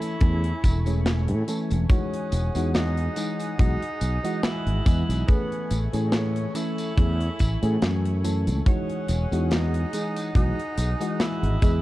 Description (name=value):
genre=vaporwave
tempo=71 BPM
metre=4/4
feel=swing 55% on 16ths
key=E major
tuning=A4 = 440 Hz
part: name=clear tenor saxophone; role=melody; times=0.0-11.8 s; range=B3 to E4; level=-33 LUFS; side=equal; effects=tape echo
part: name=mellow FM electric piano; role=accompaniment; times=0.0-11.8 s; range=E3 to D#5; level=-29 LUFS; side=equal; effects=wide subtle chorus, vintage 12-bit sampler grit
part: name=lush unison pad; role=sustained chords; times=0.0-11.8 s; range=A3 to D#6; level=-38 LUFS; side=right 1 dB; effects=chorus, vintage 12-bit sampler grit
part: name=tight metal drum kit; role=drums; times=0.0-11.8 s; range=hi-hat, snare drum, tambourine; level=-30 LUFS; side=equal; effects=none
part: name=fretless electric bass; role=bass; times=0.2-11.8 s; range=E1 to A2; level=-24 LUFS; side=equal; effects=none
part: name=kick drum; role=drums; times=0.2-11.8 s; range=none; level=-21 LUFS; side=equal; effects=none
room=studio ambience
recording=dark, warm production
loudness=-22 LUFS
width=side -16 dB against mid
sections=0.0-11.8 A section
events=none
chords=0.0 Amaj7; 1.9 Emaj9; 5.3 Amaj7; 8.7 Emaj9